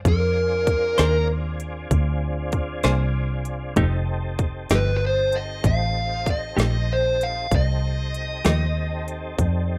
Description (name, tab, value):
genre	slow blues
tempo	64 BPM (dotted quarters)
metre	12/8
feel	straight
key	F mixolydian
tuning	A4 = 441 Hz
part	vintage muted fingered electric bass	bass	0.0-9.8 s	F1 to F2	-26 LUFS	equal	none
part	dark smooth lead guitar	melody	0.1-9.8 s	Bb4 to F5	-27 LUFS	equal	overdrive
part	tonewheel organ	sustained chords	0.1-9.8 s	C4 to A4	-36 LUFS	equal	chorus vibrato, slow rotary speaker
part	garage drum kit	drums	0.1-9.5 s	hi-hat, kick drum, snare drum	-26 LUFS	equal	overdrive
part	clean electric guitar	accompaniment	1.0-8.6 s	F3 to C5	-26 LUFS	equal	tremolo
room	digital ambience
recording	rough home demo mix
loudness	-23 LUFS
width	mono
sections	0.0-9.8 A section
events	none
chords	0.0 Bb9; 3.8 F9